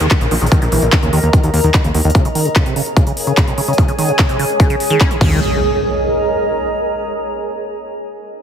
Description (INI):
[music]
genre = psychedelic trance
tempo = 147 BPM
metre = 4/4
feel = straight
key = unclear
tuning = A4 = 441 Hz
[part]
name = liquid acid bass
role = riff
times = 0.0-5.4 s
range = C3 to Db4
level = -20 LUFS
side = equal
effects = chorus, auto-pan, sidechain pumping, digital delay
[part]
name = fat analog bass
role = bass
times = 0.0-2.1, 5.2-5.4 s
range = Bb1 to Eb2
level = -15 LUFS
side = equal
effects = none
[part]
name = big-room dance drum kit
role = drums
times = 0.0-5.3 s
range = crash cymbal, handclaps, hi-hat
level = -21 LUFS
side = left 1 dB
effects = none
[part]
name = downlifter and impact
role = sound effects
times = 0.0-2.1, 5.2-6.8 s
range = none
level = -25 LUFS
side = equal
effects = none
[part]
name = granular cloud pad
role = texture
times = 0.0-7.0 s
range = Ab4 to Bb5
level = -19 LUFS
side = right 1 dB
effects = built-in reverb, sidechain pumping
[part]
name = electronic kick drum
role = drums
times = 0.1-5.3 s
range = none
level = -13 LUFS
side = equal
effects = none
[sound]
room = light reverb, digital ambience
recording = heavily compressed radio sound, multiband compression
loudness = -12 LUFS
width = side -8 dB against mid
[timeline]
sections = 0.0-5.4 A section; 5.4-7.0 B section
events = filter sweep on acid bass 0.0-5.4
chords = 0.0 Eb5; 2.1 Db5; 5.2 Eb5